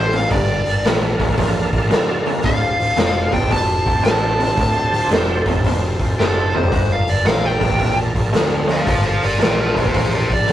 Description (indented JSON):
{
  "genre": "blues rock power trio and southern rock",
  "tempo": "112 BPM",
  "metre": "4/4",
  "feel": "swing 66% on 8ths",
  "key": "unclear",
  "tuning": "A4 = 440 Hz",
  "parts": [
    { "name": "smooth overdriven lead guitar", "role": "melody", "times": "0.0-10.5 s", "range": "G4 to A5", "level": "-20 LUFS", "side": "equal", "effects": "none" },
    { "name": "overdriven tonewheel organ", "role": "sustained chords", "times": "0.0-10.5 s", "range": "D4 to F5", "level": "-26 LUFS", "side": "right 1 dB", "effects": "slow rotary speaker, chorus vibrato" },
    { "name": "raw garage guitar", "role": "riff", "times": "0.0-10.5 s", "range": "D2 to F3", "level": "-23 LUFS", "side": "equal", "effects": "overdrive" },
    { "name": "fuzz picked electric bass", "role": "bass", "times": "0.0-10.5 s", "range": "D1 to D2", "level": "-22 LUFS", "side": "equal", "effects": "overdrive" },
    { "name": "raw garage drum kit", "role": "drums", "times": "0.1-10.5 s", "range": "hi-hat, kick drum, snare drum, toms", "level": "-19 LUFS", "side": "equal", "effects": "none" }
  ],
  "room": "moderate booth ambience, RT60 0.2 s",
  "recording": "rough rehearsal-room recording",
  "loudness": "-15 LUFS",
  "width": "side -12 dB against mid",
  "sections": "0.0-10.5 A section",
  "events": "drum fill 6.2-6.7",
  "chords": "0.3 Gm7; 2.5 Dm7; 6.7 Gm7",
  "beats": "| 0.32 0.85 1.38 1.92 | 2.45 2.98 3.52 4.05 | 4.59 5.12 5.66 6.20 | 6.73 7.27 7.81 8.34 | 8.88 9.42 9.96 10.49"
}